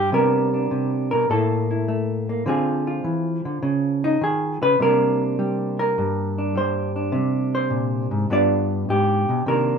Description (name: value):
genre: solo jazz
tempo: 103 BPM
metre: 4/4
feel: swing 69% on 8ths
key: unclear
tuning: A4 = 440 Hz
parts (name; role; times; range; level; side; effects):
- hollow-body jazz guitar; solo; 0.0-9.8 s; G2 to D5; -19 LUFS; equal; none
room: moderate club reverb, RT60 0.6 s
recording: minimal, uncompressed stereo recording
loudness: -19 LUFS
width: side -6 dB against mid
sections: 0.0-9.5 A section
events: hollow-body jazz guitar solo 0.0-9.5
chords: 0.1 Csus2; 1.3 A5; 2.5 Dm7b5; 3.6 Dbadd9; 4.8 Csus2; 8.3 G7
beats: | 0.11 0.70 1.28 1.86 | 2.45 3.04 3.62 4.20 | 4.79 5.37 5.96 6.54 | 7.13 7.71 8.30 8.88 | 9.47